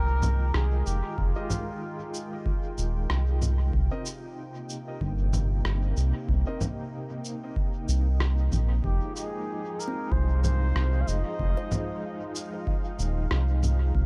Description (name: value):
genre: ambient dub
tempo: 94 BPM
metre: 4/4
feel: swing 57% on 16ths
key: F minor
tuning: A4 = 440 Hz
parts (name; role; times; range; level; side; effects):
- trumpet with bucket mute; melody; 0.0-2.4, 8.8-12.4 s; F4 to F5; -39 LUFS; equal; dub echo
- warm analog pad; sustained chords; 0.0-14.1 s; C3 to G5; -39 LUFS; equal; chorus, tremolo
- round analog bass; bass; 0.0-14.1 s; Eb1 to C2; -27 LUFS; equal; tube saturation
- electronic congas, cabasa and rim click; drums; 0.2-13.8 s; none; -35 LUFS; equal; dub echo
- electronic kick drum; drums; 1.2-14.1 s; none; -33 LUFS; equal; none
- warm upright piano; stabs; 1.4-6.6 s; Ab3 to Eb5; -46 LUFS; equal; dub echo
- bubbling stepped-filter texture; texture; 8.8-14.1 s; F4 to F5; -46 LUFS; equal; chorus, built-in reverb
- kalimba; arpeggios; 9.9-13.0 s; C4 to C5; -46 LUFS; equal; none
room: little or no reverb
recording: none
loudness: -28 LUFS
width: mono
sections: 0.0-14.1 A section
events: none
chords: 0.0 Fm9; 3.7 Cm7; 8.8 Fm9